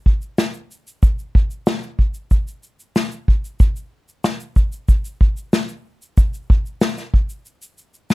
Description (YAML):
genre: pop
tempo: 93 BPM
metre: 4/4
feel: straight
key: none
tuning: none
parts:
  - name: unplugged drum kit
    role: drums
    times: 0.1-8.1 s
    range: kick drum, shaker, snare drum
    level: -15 LUFS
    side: equal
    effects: none
room: little or no reverb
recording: dark, warm production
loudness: -17 LUFS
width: side -20 dB against mid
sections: 0.0-8.1 A section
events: none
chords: none